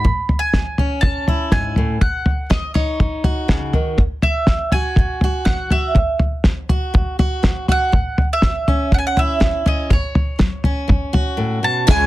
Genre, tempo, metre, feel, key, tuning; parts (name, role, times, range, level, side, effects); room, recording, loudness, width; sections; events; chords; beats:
indie folk with a building arrangement; 122 BPM; 4/4; straight; E major; A4 = 443 Hz
mandolin; melody; 0.0-12.1 s; C#5 to B5; -21 LUFS; right 2 dB
fingerpicked steel-string acoustic guitar; accompaniment; 0.0-11.9 s; E2 to F#4; -23 LUFS; left 1 dB
cloth-damped thuddy drum kit; drums; 0.0-12.0 s; kick drum, snare drum, toms; -17 LUFS; equal
picked steel-string acoustic guitar; accompaniment; 11.9-12.1 s; C#3 to E4; -21 LUFS; left 7 dB
pedal harmonium; sustained chords; 11.9-12.1 s; G#3 to C#5; -30 LUFS; right 3 dB
upright bass; bass; 11.9-12.1 s; C#2; -19 LUFS; equal
tambourine; percussion; 11.9-12.0 s; -27 LUFS; right 16 dB
little or no reverb; dense, heavily limited modern master; -15 LUFS; side -16 dB against mid
0.0-11.9 A section
0.0 A; 2.0 B; 4.0 Esus2; 7.9 A; 9.9 Bsus2
| 0.04 0.54 1.03 1.52 | 2.02 2.51 3.00 3.49 | 3.98 4.48 4.97 5.46 | 5.96 6.45 6.95 7.44 | 7.93 8.43 8.92 9.41 | 9.91 10.40 10.89 11.39 | 11.88